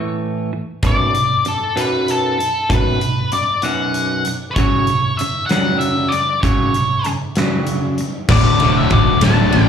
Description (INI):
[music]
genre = quiet-loud alternative rock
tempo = 64 BPM (dotted quarters)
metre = 6/8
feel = straight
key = B minor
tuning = A4 = 440 Hz
[part]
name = twangy electric guitar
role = arpeggios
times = 0.0-8.3 s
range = B1 to A3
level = -21 LUFS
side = right 2 dB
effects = phaser, slapback echo
[part]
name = big rock drum kit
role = drums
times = 0.8-9.7 s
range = crash cymbal, hi-hat, kick drum, ride cymbal, snare drum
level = -20 LUFS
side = equal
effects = none
[part]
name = octave-fuzz lead guitar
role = melody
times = 0.9-9.7 s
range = A4 to A5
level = -19 LUFS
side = left 2 dB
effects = distortion, slapback echo
[part]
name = string machine, violas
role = sustained chords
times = 8.3-9.7 s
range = A3 to D5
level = -28 LUFS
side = right 2 dB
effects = none
[part]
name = crunchy overdriven guitar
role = riff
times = 8.3-9.7 s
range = D2 to D3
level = -22 LUFS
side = right 10 dB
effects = slapback echo
[part]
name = overdriven electric guitar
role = riff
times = 8.3-9.7 s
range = D2 to D3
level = -16 LUFS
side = left 8 dB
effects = slapback echo
[part]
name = sustaining fretless electric bass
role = bass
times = 8.3-9.7 s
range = D1 to A1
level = -16 LUFS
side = right 1 dB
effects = lush chorus
[sound]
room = small room reverb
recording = live gig heard through the venue's PA, club reverb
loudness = -14 LUFS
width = side -8 dB against mid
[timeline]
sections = 0.0-8.3 A section; 8.3-9.7 B section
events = none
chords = 0.0 A5; 0.8 Bm7; 4.6 F#5; 8.3 D